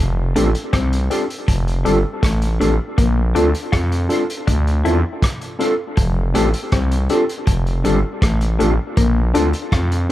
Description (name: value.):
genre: lovers rock reggae.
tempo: 80 BPM.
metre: 4/4.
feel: straight.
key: F major.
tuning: A4 = 440 Hz.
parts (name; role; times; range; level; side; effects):
electric guitar through a small old amp; riff; 0.0-9.9 s; F3 to F4; -25 LUFS; left 5 dB; none.
growling FM bass; bass; 0.0-10.1 s; F1 to F2; -18 LUFS; equal; none.
tine electric piano; accompaniment; 0.4-10.1 s; C4 to A4; -23 LUFS; left 3 dB; overdrive, fast stereo tremolo, tape echo.
mellow electric guitar; stabs; 0.4-10.1 s; D4 to A4; -24 LUFS; right 4 dB; ensemble chorus, tape echo.
vintage drum kit; drums; 0.4-10.1 s; hi-hat, kick drum, rim click; -21 LUFS; equal; none.
room: light reverb.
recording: none.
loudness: -15 LUFS.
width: side -14 dB against mid.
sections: 0.0-10.1 A section.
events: none.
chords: 0.0 F6; 3.0 Bbmaj7; 6.0 F6; 9.0 Bbmaj7.